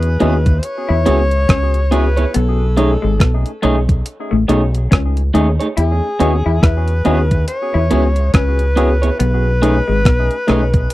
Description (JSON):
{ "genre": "lovers rock reggae", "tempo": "70 BPM", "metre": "4/4", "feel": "swing 60% on 16ths", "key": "E major", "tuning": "A4 = 437 Hz", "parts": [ { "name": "warm alto saxophone", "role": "melody", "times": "0.0-10.9 s", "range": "G#4 to C#5", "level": "-21 LUFS", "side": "left 1 dB", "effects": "tape echo" }, { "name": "electric guitar through a small old amp", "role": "riff", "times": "0.0-10.7 s", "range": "G#3 to E4", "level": "-22 LUFS", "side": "left 5 dB", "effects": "none" }, { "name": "deep dub fingered electric bass", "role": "bass", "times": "0.0-10.9 s", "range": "G#1 to E2", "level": "-15 LUFS", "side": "equal", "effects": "none" }, { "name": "clean 12-bit digital drum machine", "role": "drums", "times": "0.0-10.9 s", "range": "hi-hat, kick drum, rim click", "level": "-14 LUFS", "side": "equal", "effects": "overdrive" }, { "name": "barky tine electric piano", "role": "accompaniment", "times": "0.2-10.6 s", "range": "A3 to G#4", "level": "-21 LUFS", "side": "left 2 dB", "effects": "overdrive, tape echo" }, { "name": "electric guitar through a small old amp", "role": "stabs", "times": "0.2-10.6 s", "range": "A3 to C#5", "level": "-19 LUFS", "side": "right 3 dB", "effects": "spring reverb" } ], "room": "little or no reverb", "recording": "dry, close 1970s-style studio recording", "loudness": "-12 LUFS", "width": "side -16 dB against mid", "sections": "0.0-10.9 A section", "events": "none", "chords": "0.0 E6; 2.3 B13; 5.8 E6; 9.2 B13" }